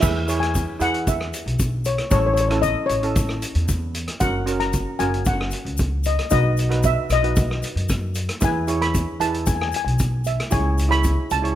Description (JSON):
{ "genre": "calypso", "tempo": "114 BPM", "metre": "4/4", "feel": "straight", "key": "E major", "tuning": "A4 = 438 Hz", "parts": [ { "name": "steel pan", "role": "melody", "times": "0.0-11.6 s", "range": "C#5 to B5", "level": "-24 LUFS", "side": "left 2 dB", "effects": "none" }, { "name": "steel pan", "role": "accompaniment", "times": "0.0-11.6 s", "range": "C#4 to C#5", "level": "-27 LUFS", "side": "right 4 dB", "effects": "none" }, { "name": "upright bass", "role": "bass", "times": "0.0-11.6 s", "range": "F#1 to F#2", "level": "-23 LUFS", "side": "equal", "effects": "none" }, { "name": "street-band drum kit", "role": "drums", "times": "0.0-11.6 s", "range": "crash cymbal, hi-hat, kick drum, rim click", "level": "-24 LUFS", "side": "equal", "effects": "none" }, { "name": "tube shaker", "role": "percussion", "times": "0.0-11.4 s", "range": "none", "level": "-35 LUFS", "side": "left 6 dB", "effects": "none" } ], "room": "light reverb", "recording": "close, detailed microphones", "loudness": "-19 LUFS", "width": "side -12 dB against mid", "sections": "0.0-11.6 A section", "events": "none", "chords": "0.0 E6; 2.1 A; 4.2 F#; 6.3 B; 8.4 E; 10.5 C#m", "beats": "| 0.02 0.54 1.06 1.59 | 2.11 2.64 3.16 3.68 | 4.21 4.73 5.26 5.79 | 6.31 6.84 7.36 7.89 | 8.42 8.94 9.47 10.00 | 10.52 11.05" }